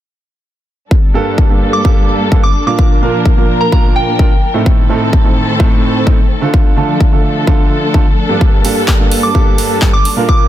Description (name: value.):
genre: EDM, festival progressive house.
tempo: 128 BPM.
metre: 4/4.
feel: straight.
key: G minor.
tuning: A4 = 440 Hz.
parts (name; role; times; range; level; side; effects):
dark studio string section; sustained chords; 0.9-10.5 s; Eb3 to Bb4; -19 LUFS; left 2 dB; sidechain pumping, low-pass filter.
electronic kick drum; drums; 0.9-10.4 s; none; -10 LUFS; equal; none.
warm grand piano; accompaniment; 1.1-10.5 s; G2 to Bb4; -15 LUFS; right 3 dB; sidechain pumping, dub echo.
soft synth bell; melody; 1.7-4.4, 9.2-10.5 s; G5 to D6; -18 LUFS; right 1 dB; chorus, vintage 12-bit sampler grit, ping-pong delay.
big-room dance drum kit; drums; 8.6-10.1 s; handclaps, hi-hat; -18 LUFS; right 1 dB; none.
room: digital ambience.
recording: dense, heavily limited modern master.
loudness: -9 LUFS.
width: side -12 dB against mid.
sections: 0.9-10.5 A section.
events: none.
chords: 0.9 Gmadd9; 2.8 Bb; 4.7 Adim; 6.5 Gmadd9.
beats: | 0.91 1.38 1.85 2.32 | 2.79 3.26 3.72 4.19 | 4.66 5.13 5.60 6.07 | 6.54 7.01 7.47 7.94 | 8.41 8.88 9.35 9.82 | 10.29.